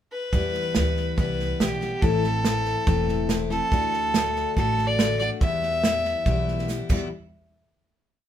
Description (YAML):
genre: honky-tonk and classic country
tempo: 142 BPM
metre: 4/4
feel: straight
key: E minor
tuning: A4 = 440 Hz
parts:
  - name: clear fiddle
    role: melody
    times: 0.1-6.6 s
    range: G4 to E5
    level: -26 LUFS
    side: equal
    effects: none
  - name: picked steel-string acoustic guitar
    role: accompaniment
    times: 0.3-7.1 s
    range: E2 to F#4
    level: -28 LUFS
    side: left 6 dB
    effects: none
  - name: upright bass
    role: bass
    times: 0.3-7.1 s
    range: E1 to E2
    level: -29 LUFS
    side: right 1 dB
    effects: none
  - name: natural country drum kit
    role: drums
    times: 0.3-7.0 s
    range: crash cymbal, hi-hat, kick drum, snare drum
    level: -25 LUFS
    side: right 2 dB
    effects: none
room: moderate studio reverb, RT60 0.6 s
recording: minimal, uncompressed stereo recording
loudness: -21 LUFS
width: side -10 dB against mid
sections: 0.0-0.3 pickup bar; 0.3-7.1 A section; 7.1-8.3 final hit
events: drum fill 6.7-7.1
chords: 0.3 Em; 2.0 Am; 3.7 D; 5.4 Em; 7.1 N.C.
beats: | 0.33 0.75 1.18 1.60 | 2.02 2.45 2.87 3.29 | 3.72 4.14 4.57 4.99 | 5.41 5.84 6.26 6.68